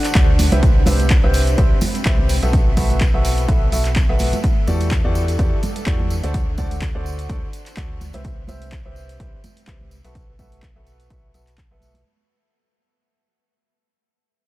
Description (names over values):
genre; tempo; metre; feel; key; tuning
piano house; 126 BPM; 4/4; swing 55% on 16ths; unclear; A4 = 440 Hz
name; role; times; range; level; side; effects
punchy analog drum machine; drums; 0.0-12.0 s; handclaps, hi-hat; -28 LUFS; equal; none
granular cloud pad; texture; 0.0-12.1 s; B3 to B5; -30 LUFS; equal; built-in reverb, sidechain pumping
tambourine and congas; percussion; 0.1-12.0 s; none; -27 LUFS; right 3 dB; none
clear baby grand piano; riff; 0.2-12.0 s; D3 to E5; -27 LUFS; equal; lush chorus, sidechain pumping, low-pass filter, tape echo
organ-like FM bass; bass; 0.2-12.0 s; B1 to E2; -21 LUFS; equal; tube saturation, sidechain pumping
electronic kick drum; drums; 0.2-11.7 s; none; -18 LUFS; equal; none
room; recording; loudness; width
little or no reverb; none; -15 LUFS; side -17 dB against mid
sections
0.0-12.1 A section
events
fade-out on ambient pad 0.0-12.1; fade-out 0.0-12.1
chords
0.4 Cmaj7; 2.5 B7sus4; 4.4 Em11; 6.3 D7; 8.0 Cmaj7; 10.2 B7sus4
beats
0.15 | 0.63 1.10 1.58 2.06 | 2.53 3.01 3.48 3.96 | 4.44 4.91 5.39 5.87 | 6.34 6.82 7.29 7.77 | 8.25 8.72 9.20 9.68 | 10.15 10.63 11.10 11.58